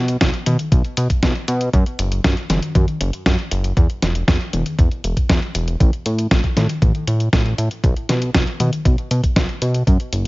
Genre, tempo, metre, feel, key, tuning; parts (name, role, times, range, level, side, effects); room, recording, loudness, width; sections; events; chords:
italo disco; 118 BPM; 4/4; straight; A4 = 444 Hz
fat analog bass; bass; 0.0-10.3 s; E1 to B2; -20 LUFS; equal
clean 12-bit digital drum machine; drums; 0.1-10.3 s; hi-hat, snare drum, toms; -21 LUFS; equal; studio reverb
electronic kick drum; drums; 0.2-10.0 s; -17 LUFS; equal; studio reverb
digital ambience; nothing above 7.5 kHz; -16 LUFS; side -21 dB against mid
0.0-10.3 A section